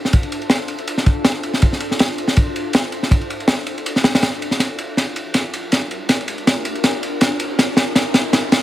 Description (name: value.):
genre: drum and bass, jungle.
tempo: 161 BPM.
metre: 4/4.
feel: swing 53% on 16ths.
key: D minor.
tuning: A4 = 440 Hz.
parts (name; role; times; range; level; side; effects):
ethereal airy pad; sustained chords; 0.0-8.6 s; D4 to C5; -26 LUFS; left 1 dB; ensemble chorus, built-in reverb.
crunchy breakbeat drum kit; drums; 0.1-8.6 s; kick drum, ride cymbal, snare drum; -16 LUFS; equal; none.
riser; sound effects; 5.8-8.6 s; none; -32 LUFS; equal; none.
room: small room ambience.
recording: vinyl crackle.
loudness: -16 LUFS.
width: side -14 dB against mid.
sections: 0.0-8.6 A section.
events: build-up 0.0-8.6; drum fill 4.6-8.6; riser 5.8-8.6.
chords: 0.0 Dm7; 4.6 Gm7.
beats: | 0.13 0.50 0.88 1.25 | 1.62 1.99 2.37 2.74 | 3.11 3.48 3.86 4.23 | 4.60 4.97 5.35 5.72 | 6.09 6.47 6.84 7.21 | 7.58 7.96 8.33.